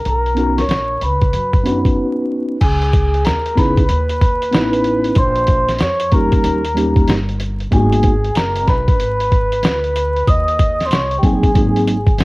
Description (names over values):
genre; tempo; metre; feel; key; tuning
hip hop, jazz-hop; 94 BPM; 4/4; swing 64% on 16ths; unclear; A4 = 440 Hz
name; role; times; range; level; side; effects
breathy flugelhorn; melody; 0.0-12.2 s; G4 to D#5; -21 LUFS; right 1 dB; cassette tape, analog delay
vibraphone with soft mallets; second line; 0.0-12.2 s; G5 to D#6; -22 LUFS; left 1 dB; cassette tape
upright bass; bass; 0.0-12.2 s; F#1 to F#2; -20 LUFS; equal; none
lo-fi sampler-style drum kit; drums; 0.1-12.2 s; crash cymbal, hi-hat, kick drum, snare drum; -16 LUFS; equal; vintage 12-bit sampler grit, cassette tape
mellow tine electric piano; accompaniment; 0.3-12.0 s; F#3 to B4; -17 LUFS; equal; fast stereo tremolo, cassette tape
room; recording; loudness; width
little or no reverb; home recording on cassette, vinyl crackle; -13 LUFS; side -22 dB against mid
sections
0.0-2.6 A section; 2.6-12.2 B section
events
break 2.0-2.6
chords
0.0 Bmaj9; 2.6 C#m7; 5.2 A#m; 6.4 D#7; 7.7 G#m9; 10.3 D#m; 11.6 G#7